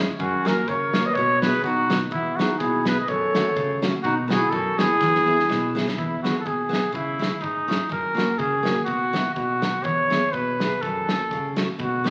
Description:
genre	alpine folk, alpine dance band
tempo	124 BPM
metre	2/4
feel	swing 55% on 8ths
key	E major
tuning	A4 = 440 Hz
part	picked steel-string acoustic guitar	accompaniment	0.0-12.1 s	E2 to G#4	-29 LUFS	equal	none
part	warm trumpet	melody	0.2-12.1 s	D#4 to D#5	-26 LUFS	equal	none
part	mellow clarinet	second line	0.2-5.8 s	B3 to B4	-30 LUFS	equal	none
part	loose indie drum kit	drums	0.2-12.1 s	kick drum, snare drum	-30 LUFS	equal	none
room	wet large studio reverb, RT60 1.2 s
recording	very old 78 rpm record, vinyl crackle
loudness	-23 LUFS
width	mono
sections	0.0-6.0 A section; 6.0-12.1 A section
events	drum fill 5.0-6.0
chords	0.2 F#; 1.1 Bsus4; 1.6 B; 2.1 E; 3.1 F#m; 4.0 B; 5.0 E; 6.9 C#madd9; 7.9 F#; 8.9 Bsus4; 9.4 B; 9.8 E; 10.8 F#m

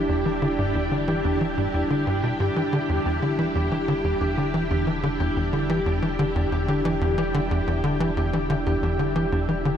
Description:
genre	ambient, sequencer-driven space music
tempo	91 BPM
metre	4/4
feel	straight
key	E minor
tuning	A4 = 440 Hz
part	string machine, full ensemble	sustained chords	0.0-9.8 s	D4 to G4	-26 LUFS	right 1 dB	ensemble chorus
part	Celtic harp	arpeggios	0.0-9.8 s	D4 to G4	-31 LUFS	left 3 dB	auto-pan, low-pass filter, ping-pong delay
part	tight sequencer bass	riff	0.0-9.7 s	E2 to E3	-24 LUFS	equal	analog chorus, ping-pong delay
part	warm sub bass	bass	0.0-9.8 s	E1	-34 LUFS	equal	none
room	moderate huge ambient reverb, RT60 8.2 s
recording	none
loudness	-21 LUFS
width	side -9 dB against mid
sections	0.0-9.8 A section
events	none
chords	0.0 Em7

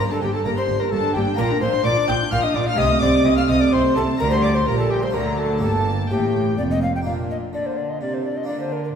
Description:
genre	classical, baroque-style concerto movement with solo episodes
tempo	127 BPM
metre	3/4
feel	straight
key	G minor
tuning	A4 = 440 Hz
part	mellow tenor recorder	melody	0.0-8.9 s	G4 to G5	-23 LUFS	left 3 dB	none
part	warm chamber violin section	melody	0.0-9.0 s	F4 to G6	-30 LUFS	left 4 dB	none
part	dark chamber violin section	second line	0.0-9.0 s	D4 to G6	-28 LUFS	equal	none
part	harpsichord	accompaniment	0.0-9.0 s	F2 to Bb4	-25 LUFS	right 3 dB	none
part	warm chamber viola section	accompaniment	0.0-9.0 s	F#3 to F4	-28 LUFS	equal	none
part	rich chamber double bass section	bass	0.0-7.1 s	F1 to D2	-25 LUFS	right 1 dB	none
part	rich studio cello section	bass	0.0-8.9 s	F2 to D3	-26 LUFS	right 2 dB	none
room	wet recital hall reverb, RT60 1.8 s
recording	heard from further back in the room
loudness	-18 LUFS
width	side -7 dB against mid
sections	0.0-7.1 A section; 7.1-9.0 B section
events	none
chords	0.0 Gm; 1.4 Bb; 2.8 Adim/C; 4.2 Gm/D; 5.1 D; 5.6 Gm; 7.1 Bb

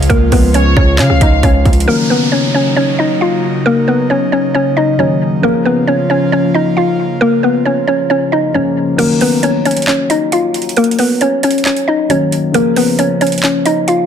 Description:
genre	hip hop, trap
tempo	135 BPM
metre	4/4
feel	half-time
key	Eb minor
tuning	A4 = 438 Hz
part	dark concert grand piano	accompaniment	0.0-14.1 s	Db3 to Eb4	-19 LUFS	left 3 dB	none
part	airy breathy pad	sustained chords	0.0-9.0 s	Db3 to F4	-19 LUFS	equal	chorus
part	distorted 808-style bass	bass	0.0-1.9 s	Db2 to Db3	-12 LUFS	right 1 dB	distortion
part	trap drum kit	drums	0.0-1.9, 9.0-14.0 s	crash cymbal, handclaps, hi-hat, kick drum, rim click	-16 LUFS	right 1 dB	none
part	mallet-like synth pluck	melody	0.1-14.1 s	Bb3 to F5	-12 LUFS	equal	chorus, ping-pong delay
part	dark studio violin section	second line	0.5-1.4 s	Db5 to F5	-20 LUFS	left 1 dB	ping-pong delay
part	downlifter	sound effects	1.9-5.4 s	none	-23 LUFS	right 1 dB	none
room	light reverb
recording	dense, heavily limited modern master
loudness	-10 LUFS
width	side -8 dB against mid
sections	0.0-1.9 A section; 1.9-9.0 B section; 9.0-14.1 C section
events	kick muted 9.0-14.1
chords	0.0 Db; 1.9 Ebm7; 5.4 Bbm; 9.0 Ebm7; 12.5 Bbm

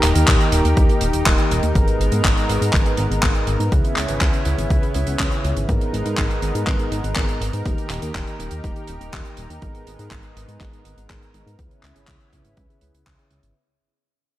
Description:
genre	italo disco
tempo	122 BPM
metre	4/4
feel	straight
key	G# harmonic minor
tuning	A4 = 440 Hz
part	lush unison pad	sustained chords	0.0-13.5 s	D#3 to A#4	-26 LUFS	equal	chorus
part	mellow tine electric piano	stabs	0.0-13.5 s	G#2 to C#5	-28 LUFS	equal	medium stereo tremolo, low-pass filter, tape echo
part	chorused synth bass	bass	0.0-13.5 s	D#1 to G#2	-22 LUFS	equal	tube saturation
part	damped 70s drum kit	drums	0.0-13.5 s	handclaps, hi-hat	-24 LUFS	equal	studio reverb, gated reverb
part	electronic kick drum	drums	0.3-13.2 s	none	-20 LUFS	equal	overdrive, studio reverb
room	light reverb, studio reverb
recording	none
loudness	-17 LUFS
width	side -14 dB against mid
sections	0.0-13.6 A section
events	fade-out 0.0-13.6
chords	0.0 D#; 1.8 G#madd9; 3.7 C#m7; 5.7 G#madd9; 7.7 D#; 9.6 G#madd9; 11.6 C#m7

